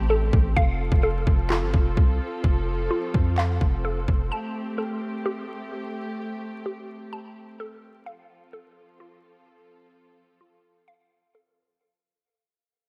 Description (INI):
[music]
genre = hip hop, trap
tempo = 128 BPM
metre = 4/4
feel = half-time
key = unclear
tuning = A4 = 439 Hz
[part]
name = muted studio string section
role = sustained chords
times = 0.0-11.8 s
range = F3 to A4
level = -35 LUFS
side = equal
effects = none
[part]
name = hollow square pluck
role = arpeggios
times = 0.0-11.8 s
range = F4 to A5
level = -32 LUFS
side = equal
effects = chorus, low-pass filter, diffuse ambient delay
[part]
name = hard-hitting 808-style bass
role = bass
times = 0.0-4.3 s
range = F1 to F2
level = -27 LUFS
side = equal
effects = none
[part]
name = trap drum kit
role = drums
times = 0.3-4.2 s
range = handclaps, kick drum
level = -24 LUFS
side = equal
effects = none
[sound]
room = light reverb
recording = vinyl crackle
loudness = -25 LUFS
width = mono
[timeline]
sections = 0.0-11.8 A section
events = break 0.0-4.3; fade-out 0.0-11.8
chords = 0.0 Am7; 0.6 F; 4.3 Am7; 8.1 F